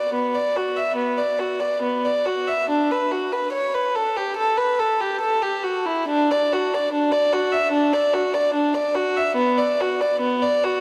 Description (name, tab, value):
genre	classical, baroque-style suite movement for unaccompanied violin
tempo	72 BPM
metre	4/4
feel	rubato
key	B minor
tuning	A4 = 441 Hz
part	warm violin	solo	0.0-10.8 s	B3 to E5	-22 LUFS	equal	none
room	wet church reverb, RT60 3.5 s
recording	dark, warm production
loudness	-22 LUFS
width	mono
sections	0.0-10.8 A section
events	none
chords	none